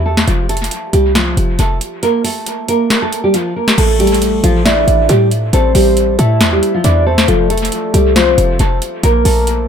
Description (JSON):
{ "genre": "hip hop, trap", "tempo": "137 BPM", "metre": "4/4", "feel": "half-time", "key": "A phrygian", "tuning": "A4 = 439 Hz", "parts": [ { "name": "nylon-string guitar", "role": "melody", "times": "0.0-9.7 s", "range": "E3 to Bb4", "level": "-15 LUFS", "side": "right 2 dB", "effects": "low-pass filter, dub echo" }, { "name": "short 808-style bass", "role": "bass", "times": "0.0-9.7 s", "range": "F1 to A2", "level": "-14 LUFS", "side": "equal", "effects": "none" }, { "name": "booming analog drum machine", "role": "drums", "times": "0.2-9.6 s", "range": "crash cymbal, hi-hat, snare drum", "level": "-18 LUFS", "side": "left 1 dB", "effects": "dub echo" }, { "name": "soft octave-layered synth lead", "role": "second line", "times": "3.8-9.7 s", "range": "A4 to E5", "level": "-16 LUFS", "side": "left 3 dB", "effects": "chorus, phaser, dub echo" } ], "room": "little or no reverb", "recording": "echo-heavy mix", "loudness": "-10 LUFS", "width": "side -8 dB against mid", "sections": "0.0-3.8 A section; 3.8-9.7 B section", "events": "kick muted 2.0-3.8", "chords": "0.3 F; 2.0 Bb5; 3.8 Am; 7.3 F; 9.0 N.C.", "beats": "| 0.28 0.71 1.15 1.59 | 2.03 2.47 2.90 3.34 | 3.78 4.22 4.66 5.09 | 5.53 5.97 6.41 6.84 | 7.28 7.72 8.16 8.60 | 9.04 9.47" }